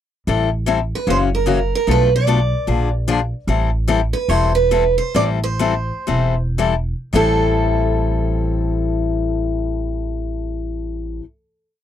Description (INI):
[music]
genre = acoustic string swing (jazz manouche)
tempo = 106-150 BPM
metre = 4/4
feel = swing 61% on 8ths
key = A minor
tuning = A4 = 440 Hz
[part]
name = picked steel-string acoustic guitar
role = accompaniment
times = 0.3-11.3 s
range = A2 to A4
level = -20 LUFS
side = left 7 dB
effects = none
[part]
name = upright bass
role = bass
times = 0.3-11.2 s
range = E1 to B1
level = -20 LUFS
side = right 1 dB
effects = none
[part]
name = picked steel-string acoustic guitar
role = melody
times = 1.0-11.2 s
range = A4 to D5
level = -20 LUFS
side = right 4 dB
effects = none
[sound]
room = little or no reverb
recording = dry, close 1970s-style studio recording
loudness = -16 LUFS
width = side -10 dB against mid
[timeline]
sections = 0.3-7.1 A section; 7.1-11.7 final chord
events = slowing down 3.5-7.1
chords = 0.3 Am7; 1.1 F#7; 1.9 Bm7b5; 2.7 Bb7; 3.5 Am7